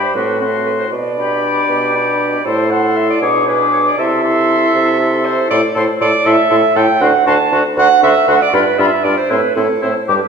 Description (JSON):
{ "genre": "quick classical-period movement for wind quintet", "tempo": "79 BPM (dotted quarters)", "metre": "6/8", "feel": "straight", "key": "unclear", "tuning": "A4 = 439 Hz", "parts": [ { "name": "silver concert flute", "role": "melody", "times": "0.0-10.1 s", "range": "B5 to D6", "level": "-21 LUFS", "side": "left 5 dB", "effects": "none" }, { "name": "warm oboe", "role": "second line", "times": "0.0-10.2 s", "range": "E4 to A4", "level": "-20 LUFS", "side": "left 4 dB", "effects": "none" }, { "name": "clear clarinet", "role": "accompaniment", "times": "0.0-10.3 s", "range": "A4 to A5", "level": "-15 LUFS", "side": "right 5 dB", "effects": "none" }, { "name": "warm French horn", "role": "accompaniment", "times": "0.0-10.2 s", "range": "G3 to E4", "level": "-21 LUFS", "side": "left 1 dB", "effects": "none" }, { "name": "warm bassoon", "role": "bass", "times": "0.0-10.2 s", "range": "D2 to C3", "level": "-18 LUFS", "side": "right 1 dB", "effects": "none" } ], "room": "wet recital hall reverb, RT60 1.6 s", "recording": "recorded in a church or concert hall", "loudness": "-11 LUFS", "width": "side -6 dB against mid", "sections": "0.0-10.3 A section", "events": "none", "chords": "0.2 F#dim/A; 0.9 G/B; 2.5 Am; 3.2 G#dim/B; 4.0 Am/C; 5.5 A5; 7.0 D; 8.5 G7; 9.3 Am" }